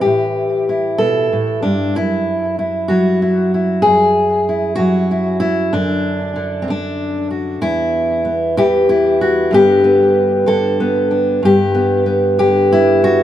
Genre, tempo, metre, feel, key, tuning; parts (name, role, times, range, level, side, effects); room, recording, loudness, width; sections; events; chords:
folk, solo fingerstyle acoustic guitar; 63 BPM (dotted quarters); 6/8; straight; A4 = 442 Hz
fingerpicked steel-string acoustic guitar; solo; 0.0-13.2 s; E2 to A4; -13 LUFS; equal; tape echo
wet studio ambience, RT60 0.5 s; band playing live in one room; -13 LUFS; side -11 dB against mid
0.0-9.5 A section; 9.5-13.2 B section
0.0 A5; 1.9 Eadd9/F#; 5.7 D/F#; 7.6 Em; 9.5 G